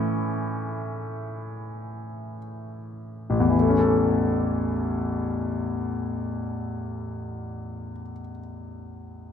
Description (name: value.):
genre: pop.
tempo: free time.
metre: none.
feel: none.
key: A major.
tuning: A4 = 443 Hz.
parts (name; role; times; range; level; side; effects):
clear concert grand piano; accompaniment; 0.0-9.3 s; A1 to A5; -25 LUFS; left 2 dB; none.
room: wet plate reverb, RT60 3.2 s.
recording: dreamy mix soaked in reverb.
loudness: -24 LUFS.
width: side -8 dB against mid.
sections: 0.0-3.5 A section; 3.5-8.1 B section.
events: slowing down 0.0-3.5; grand piano solo 0.0-3.5.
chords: 0.0 A.